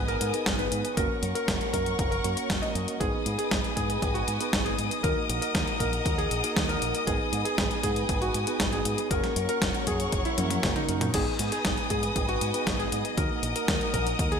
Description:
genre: italo disco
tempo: 118 BPM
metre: 4/4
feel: straight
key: G# minor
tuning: A4 = 440 Hz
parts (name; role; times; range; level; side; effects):
- warm electric grand piano; melody; 0.0-14.4 s; D#4 to D#5; -31 LUFS; left 1 dB; wide subtle chorus, ping-pong delay
- warm studio string section; sustained chords; 0.0-14.4 s; B3 to D#6; -32 LUFS; left 1 dB; none
- tine electric piano; stabs; 0.0-14.4 s; A#3 to B4; -35 LUFS; right 4 dB; medium stereo tremolo, low-pass filter
- fingered electric bass with an envelope filter; bass; 0.0-14.4 s; F#1 to G#2; -33 LUFS; equal; none
- clean 12-bit digital drum machine; drums; 0.1-14.4 s; crash cymbal, hi-hat, snare drum, toms; -31 LUFS; equal; overdrive, gated reverb
- electronic kick drum; drums; 0.5-14.3 s; none; -32 LUFS; equal; none
room: moderate lush hall reverb, RT60 2.4 s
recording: bright 1980s-style digital production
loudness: -25 LUFS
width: side -6 dB against mid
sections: 0.0-14.4 A section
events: drum fill 10.4-11.1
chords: 0.0 G#m; 1.0 F#; 3.0 G#m; 5.0 D#m; 7.1 G#m; 9.1 F#; 11.1 G#m; 13.2 D#m

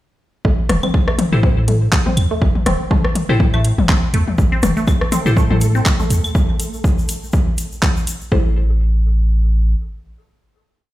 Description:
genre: minimal techno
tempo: 122 BPM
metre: 4/4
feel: swing 56% on 16ths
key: A minor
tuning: A4 = 441 Hz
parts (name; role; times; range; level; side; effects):
- resonant blip pluck; riff; 0.4-8.5 s; A3 to C4; -25 LUFS; equal; phaser, sidechain pumping, dub echo
- punchy sub bass; bass; 0.4-9.8 s; E1 to A2; -16 LUFS; equal; sidechain pumping
- electronic kick drum; drums; 0.4-8.4 s; none; -16 LUFS; equal; overdrive, studio ambience
- garage drum kit; drums; 0.7-8.2 s; handclaps, hi-hat; -22 LUFS; right 1 dB; studio ambience
- organic electronic drum kit; percussion; 0.7-6.3 s; claves, rim click, toms; -20 LUFS; left 3 dB; overdrive, studio ambience, digital delay
- wavetable chord stab; stabs; 1.3-5.3, 8.3-10.9 s; E4 to C5; -24 LUFS; left 2 dB; cassette tape, digital delay
- egg shaker; percussion; 4.4-8.3 s; none; -32 LUFS; left 3 dB; none
- flickering grainy texture; texture; 5.0-6.4 s; A3 to A4; -30 LUFS; right 2 dB; built-in reverb, sidechain pumping
room: light reverb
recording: played on a big sound system in a bare room, stone room reverb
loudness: -14 LUFS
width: side -16 dB against mid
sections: 0.4-8.3 drop; 8.3-10.9 final chord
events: drop 0.4-8.3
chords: 0.4 Am; 8.3 Am7

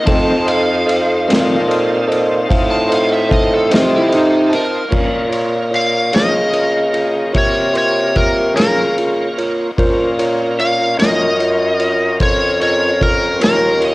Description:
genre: slow blues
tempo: 50 BPM (dotted quarters)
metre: 12/8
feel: straight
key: Bb harmonic minor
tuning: A4 = 440 Hz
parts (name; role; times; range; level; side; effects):
- overdriven slide guitar; second line; 0.0-4.9, 13.8-13.9 s; Eb4 to A5; -18 LUFS; right 1 dB; none
- bright tonewheel organ; sustained chords; 0.0-13.9 s; Bb3 to A5; -23 LUFS; equal; slow rotary speaker, overdrive, chorus vibrato
- bell-like tine electric piano; accompaniment; 0.1-13.9 s; F4 to C6; -20 LUFS; right 2 dB; none
- electric guitar through a small old amp; accompaniment; 0.1-13.7 s; F2 to Db4; -21 LUFS; left 2 dB; tremolo
- mellow bassoon; bass; 0.1-13.9 s; Eb2 to Db3; -18 LUFS; equal; none
- vintage drum kit; drums; 0.1-13.9 s; crash cymbal, kick drum, ride cymbal, snare drum; -20 LUFS; equal; none
- overdriven slide guitar; melody; 5.8-13.8 s; Bb4 to F5; -16 LUFS; left 1 dB; cassette tape
room: studio reverb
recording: home recording on cassette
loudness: -12 LUFS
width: side -20 dB against mid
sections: 0.0-4.9 A section; 4.9-13.9 B section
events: electric slide guitar solo 0.0-4.9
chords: 0.1 F7; 4.9 Bbm

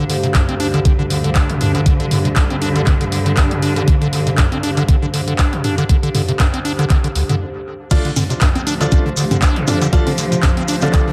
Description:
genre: acid house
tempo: 119 BPM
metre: 4/4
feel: swing 55% on 16ths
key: D minor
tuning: A4 = 439 Hz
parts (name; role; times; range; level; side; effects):
- warm studio string section; sustained chords; 0.0-11.1 s; D2 to F3; -24 LUFS; equal; vintage 12-bit sampler grit, sidechain pumping
- acid bass, square; riff; 0.0-11.1 s; D2 to D4; -22 LUFS; equal; tube saturation, cassette tape, sidechain pumping, dub echo
- warbly tape-like pad; texture; 0.0-11.1 s; D4 to F5; -29 LUFS; equal; chorus, built-in reverb, sidechain pumping
- punchy analog drum machine; drums; 0.1-11.0 s; congas, crash cymbal, handclaps, hi-hat, toms; -24 LUFS; equal; dub echo
- electronic kick drum; drums; 0.3-11.0 s; none; -16 LUFS; equal; none
- clear grand piano; stabs; 7.9-11.0 s; A3 to F4; -26 LUFS; equal; dub echo
- maracas; percussion; 7.9-11.0 s; none; -29 LUFS; equal; none
room: light reverb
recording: echo-heavy mix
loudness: -16 LUFS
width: mono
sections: 0.0-7.9 A section; 7.9-11.1 B section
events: stop 7.4-7.9; drop 7.9-11.1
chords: 0.0 Dm

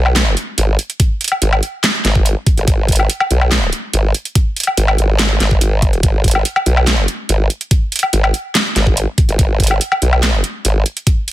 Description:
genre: heavy wobble dubstep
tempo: 143 BPM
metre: 4/4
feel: half-time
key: G# minor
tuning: A4 = 438 Hz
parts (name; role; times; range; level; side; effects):
- formant-sweep wobble bass; bass; 0.0-10.8 s; G#1 to B1; -14 LUFS; equal; chorus, overdrive
- dubstep drum kit; drums; 0.1-11.3 s; handclaps, hi-hat, snare drum, woodblock; -16 LUFS; equal; none
- electronic kick drum; drums; 1.0-11.2 s; none; -14 LUFS; equal; none
room: digital ambience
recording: dense, heavily limited modern master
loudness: -12 LUFS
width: side -15 dB against mid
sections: 0.0-11.3 A section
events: none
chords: none

